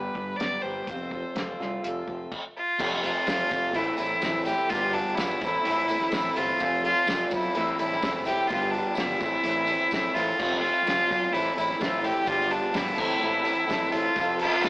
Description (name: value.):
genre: folk rock and heartland rock.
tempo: 126 BPM.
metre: 4/4.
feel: straight.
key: unclear.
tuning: A4 = 440 Hz.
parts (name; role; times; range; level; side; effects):
clear fiddle; melody; 0.0-14.7 s; D4 to D5; -26 LUFS; equal; none.
picked twelve-string acoustic guitar; accompaniment; 0.0-14.7 s; G2 to B4; -35 LUFS; equal; none.
electric guitar through a small old amp; riff; 0.0-14.7 s; F2 to A4; -30 LUFS; equal; none.
modern bright fingered electric bass; bass; 0.0-14.7 s; F1 to C2; -38 LUFS; equal; none.
cloth-damped thuddy drum kit; drums; 0.2-14.7 s; crash cymbal, hi-hat, kick drum, snare drum; -33 LUFS; equal; none.
warm upright piano; accompaniment; 2.8-14.7 s; C4 to C5; -41 LUFS; equal; none.
tambourine; percussion; 2.8-14.7 s; none; -45 LUFS; right 1 dB; none.
room: wet stone room reverb, RT60 1.0 s.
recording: rough rehearsal-room recording, warm saturation, AM radio sound.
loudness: -23 LUFS.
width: side -23 dB against mid.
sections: 0.0-2.8 A section; 2.8-14.7 B section.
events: none.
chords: 0.0 G; 0.9 F; 3.7 Am; 4.7 G7; 5.4 Am; 6.6 F; 7.6 Am; 8.5 G7; 9.2 Am; 10.4 F; 11.3 Am; 12.3 G7; 13.0 Am; 14.2 F.